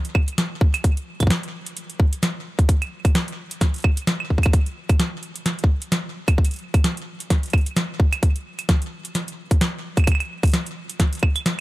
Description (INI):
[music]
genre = IDM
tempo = 130 BPM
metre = 4/4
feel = swing 56% on 16ths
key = none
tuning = none
[part]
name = booming analog drum machine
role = drums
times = 0.0-11.6 s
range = claves, hi-hat, snare drum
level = -25 LUFS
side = right 1 dB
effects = digital delay
[part]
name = electronic kick drum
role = drums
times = 0.1-11.3 s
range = none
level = -17 LUFS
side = equal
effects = overdrive
[sound]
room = little or no reverb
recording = none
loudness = -19 LUFS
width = side -18 dB against mid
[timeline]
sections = 0.0-11.6 A section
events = none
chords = none